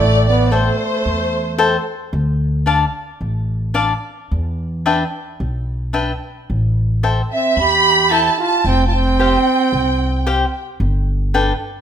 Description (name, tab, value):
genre	mexican folk, mariachi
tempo	111 BPM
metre	4/4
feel	straight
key	unclear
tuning	A4 = 439 Hz
part	warm studio violin section	melody	0.0-1.9, 7.3-10.6 s	C5 to B5	-17 LUFS	right 2 dB	none
part	dark trumpet	second line	0.0-1.9, 7.3-10.6 s	A3 to G4	-19 LUFS	right 4 dB	none
part	upright bass	bass	0.0-11.5 s	F1 to E2	-18 LUFS	equal	none
part	cavaquinho	accompaniment	0.5-11.5 s	D4 to A5	-19 LUFS	left 4 dB	none
room	light reverb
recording	minimal, uncompressed stereo recording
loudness	-15 LUFS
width	side -9 dB against mid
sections	0.0-11.8 A section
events	none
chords	0.0 Am7; 2.1 Dm; 4.3 Em7; 6.5 Am7; 8.7 Fsus2; 10.8 Gadd9